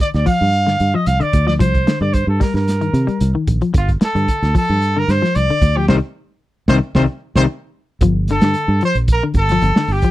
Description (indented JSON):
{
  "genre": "afrobeat",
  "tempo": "112 BPM",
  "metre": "4/4",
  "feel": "straight",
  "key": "G minor",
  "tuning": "A4 = 443 Hz",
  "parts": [
    { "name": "warm trumpet", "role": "melody", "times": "0.0-10.1 s", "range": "F4 to F5", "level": "-19 LUFS", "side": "right 1 dB", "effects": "none" },
    { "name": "semi-hollow electric guitar", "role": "arpeggios", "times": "0.0-10.1 s", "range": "C3 to G3", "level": "-20 LUFS", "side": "left 4 dB", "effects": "none" },
    { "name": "crunchy breakbeat drum kit", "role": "drums", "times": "0.0-10.1 s", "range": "hi-hat, kick drum, snare drum", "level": "-17 LUFS", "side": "equal", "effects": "none" },
    { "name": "fingered electric bass", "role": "bass", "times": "0.1-10.0 s", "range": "G1 to C3", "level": "-17 LUFS", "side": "right 1 dB", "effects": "none" }
  ],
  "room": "little or no reverb",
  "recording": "dry, close 1970s-style studio recording",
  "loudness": "-14 LUFS",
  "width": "side -16 dB against mid",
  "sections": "0.0-8.0 A section; 8.0-10.1 B section",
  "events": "band accent 5.9-8.0; drum fill 7.0-8.0",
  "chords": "0.0 G5; 1.6 Cm9; 3.7 Gsus2; 5.9 Cm; 8.0 Gm9"
}